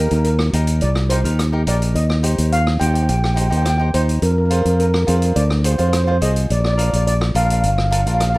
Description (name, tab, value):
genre	calypso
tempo	106 BPM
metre	4/4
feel	straight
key	unclear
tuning	A4 = 441 Hz
part	steel pan	melody	0.0-8.4 s	Bb4 to G5	-21 LUFS	right 1 dB	none
part	cavaquinho	accompaniment	0.0-8.4 s	D4 to C5	-27 LUFS	equal	none
part	modern bright fingered electric bass	bass	0.0-8.4 s	G1 to F2	-16 LUFS	equal	none
part	street-band drum kit	drums	0.1-8.3 s	hi-hat, rim click	-26 LUFS	equal	none
room	moderate studio reverb, RT60 0.6 s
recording	rough home demo mix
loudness	-15 LUFS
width	side -21 dB against mid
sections	0.0-8.4 A section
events	none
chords	0.0 Cm7; 4.2 Fm; 6.5 Bb